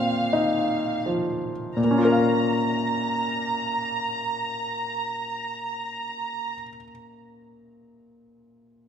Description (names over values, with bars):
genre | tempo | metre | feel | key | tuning
classical, romantic movement for piano and orchestra | 47 BPM | 4/4 | rubato | Bb minor | A4 = 441 Hz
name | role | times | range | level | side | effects
bright baby grand piano | melody | 0.0-8.9 s | Bb2 to F5 | -24 LUFS | left 1 dB | none
rich symphonic violin section | melody | 0.0-6.5 s | F5 to Bb5 | -28 LUFS | right 2 dB | none
room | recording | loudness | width
moderate scoring stage reverb, RT60 2.0 s | none | -23 LUFS | side -8 dB against mid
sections
0.0-1.8 A section; 1.8-6.9 B section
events
slowing down 0.0-1.8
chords
0.0 F5/Bb; 1.8 Bbm